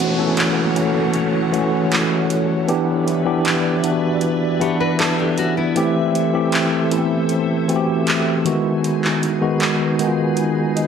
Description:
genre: contemporary R&B.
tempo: 78 BPM.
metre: 4/4.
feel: straight.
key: unclear.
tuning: A4 = 442 Hz.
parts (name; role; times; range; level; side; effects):
mellow tine electric piano; accompaniment; 0.0-10.9 s; D#3 to D#5; -18 LUFS; equal; medium stereo tremolo.
glassy FM pad; sustained chords; 0.0-10.9 s; D#4 to G#5; -25 LUFS; left 2 dB; ensemble chorus, built-in reverb.
smooth R&B drum kit; drums; 0.0-10.9 s; handclaps, hi-hat; -23 LUFS; right 1 dB; none.
downlifter; sound effects; 0.0-5.8 s; none; -29 LUFS; right 1 dB; none.
nylon-string guitar; arpeggios; 4.6-5.9 s; B3 to C#5; -24 LUFS; left 5 dB; tape echo.
room: light reverb.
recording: none.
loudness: -16 LUFS.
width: side -7 dB against mid.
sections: 0.0-10.9 A section.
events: break 0.0-10.9; tine electric piano fill 10.4-10.9.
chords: 0.0 F#m7; 2.7 Em7; 5.8 Am7; 8.5 G#m7.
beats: 0.38 1.15 1.92 | 2.69 3.46 4.22 4.99 | 5.76 6.53 7.30 8.07 | 8.84 9.61 10.38.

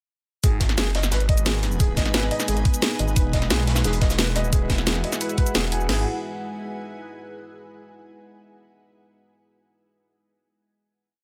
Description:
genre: dark technical drum and bass.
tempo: 176 BPM.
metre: 4/4.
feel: straight.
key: G# minor.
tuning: A4 = 440 Hz.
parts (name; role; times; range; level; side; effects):
deep dark ambient pad; sustained chords; 1.3-6.0 s; G#3 to B4; -36 LUFS; equal; chorus, built-in reverb, sidechain pumping.
felt-muted upright piano; arpeggios; 0.4-6.0 s; G#4 to G#5; -34 LUFS; equal; sidechain pumping, delay.
phased detuned saw bass; bass; 0.4-6.0 s; E1 to B1; -26 LUFS; equal; phaser, overdrive, sidechain pumping.
crunchy breakbeat drum kit; drums; 0.4-5.8 s; hi-hat, snare drum; -36 LUFS; equal; none.
drum and bass drum kit; drums; 0.4-6.0 s; crash cymbal, kick drum, snare drum; -23 LUFS; equal; none.
drum and bass drum kit; drums; 0.4-5.9 s; cabasa, hi-hat, snare drum; -27 LUFS; equal; none.
ethereal airy pad; texture; 1.6-7.2 s; D#4 to G#5; -37 LUFS; equal; ensemble chorus, built-in reverb, phaser, sidechain pumping.
room: light reverb, small room ambience.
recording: none.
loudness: -22 LUFS.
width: mono.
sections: 0.4-5.9 drop; 5.9-7.3 final chord.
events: drop 0.4-5.9.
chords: 0.4 G#m; 3.2 Eadd9; 5.9 G#m.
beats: | 0.44 0.78 1.12 1.46 | 1.80 2.14 2.48 2.82 | 3.16 3.50 3.85 4.19 | 4.53 4.87 5.21 5.55 | 5.89 6.23 6.57 6.91.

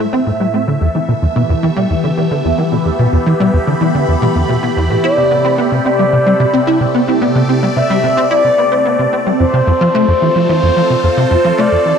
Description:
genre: ambient, sequencer-driven space music.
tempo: 110 BPM.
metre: 4/4.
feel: straight.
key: unclear.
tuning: A4 = 439 Hz.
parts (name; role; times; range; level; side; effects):
phased analog pad; sustained chords; 0.0-12.0 s; A2 to B5; -17 LUFS; equal; phaser, chorus.
plucky analog bass; riff; 0.0-11.9 s; E2 to E4; -14 LUFS; equal; ensemble chorus, analog delay.
bubbling stepped-filter texture; texture; 0.0-12.0 s; A3 to A4; -26 LUFS; equal; chorus, built-in reverb.
expressive synth lead; melody; 5.0-12.0 s; C5 to E5; -14 LUFS; left 1 dB; chorus, analog delay.
room: wet spring reverb, RT60 2.4 s.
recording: echo-heavy mix.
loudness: -11 LUFS.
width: side -7 dB against mid.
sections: 0.0-12.0 A section.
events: fade-in on synth texture 0.0-12.0.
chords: 0.0 Am; 0.7 Em; 5.0 Cadd9; 9.4 F.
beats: 0.13 | 0.67 1.22 1.76 2.31 | 2.86 3.40 3.95 4.49 | 5.04 5.58 6.13 6.67 | 7.22 7.76 8.31 8.86 | 9.40 9.95 10.49 11.04 | 11.58.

